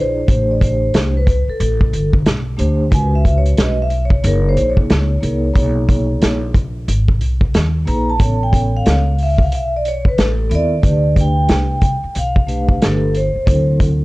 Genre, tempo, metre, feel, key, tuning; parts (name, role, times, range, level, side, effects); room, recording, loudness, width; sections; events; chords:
hip hop, jazz-hop; 91 BPM; 4/4; swing 62% on 16ths; A4 = 445 Hz
vibraphone with medium mallets; melody; 0.0-13.8 s; A4 to Bb5; -21 LUFS; equal
vibraphone with soft mallets; accompaniment; 0.0-14.0 s; F#3 to E5; -22 LUFS; right 1 dB
upright bass; bass; 0.0-14.0 s; F#1 to D#2; -17 LUFS; equal; tube saturation
vintage drum kit; drums; 0.3-14.0 s; hi-hat, kick drum, snare drum; -16 LUFS; equal
studio ambience; dry, gritty hardware recording, cassette tape; -13 LUFS; side -20 dB against mid
0.0-10.8 A section; 10.8-14.0 B section
vibraphone solo 0.0-10.8
0.3 Am7; 2.9 C#5; 4.2 F#; 5.6 B6; 8.2 A; 10.8 Dm6; 13.5 D7